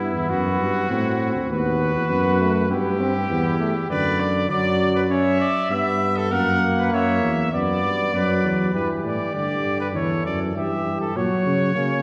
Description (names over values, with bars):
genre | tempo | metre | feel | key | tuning
classical, imitative canzona for brass ensemble | 100 BPM | 4/4 | straight | unclear | A4 = 441 Hz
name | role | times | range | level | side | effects
clear cornet | melody | 0.0-12.0 s | E4 to F#5 | -28 LUFS | equal | none
warm trumpet | second line | 0.0-12.0 s | C#4 to E5 | -30 LUFS | equal | none
clear trombone | accompaniment | 0.0-12.0 s | D3 to C#4 | -27 LUFS | equal | none
mellow bass trombone | bass | 0.0-12.0 s | D2 to C#3 | -26 LUFS | equal | none
room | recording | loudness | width
wet scoring stage reverb, RT60 1.6 s | heard from further back in the room | -22 LUFS | mono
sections
0.0-8.7 A section; 8.7-12.0 B section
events
none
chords
0.3 F#dim; 1.5 B/D#; 2.7 Em/G; 3.9 Bm/F#; 5.1 C#dim; 6.3 F#; 7.5 Bm/F#; 8.7 G5; 10.0 C#dim/E; 11.2 F#/A#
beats
0.30 0.90 | 1.50 2.10 2.71 3.30 | 3.90 4.50 5.11 5.71 | 6.32 6.92 7.53 8.14 | 8.74 9.35 9.96 10.56 | 11.16 11.76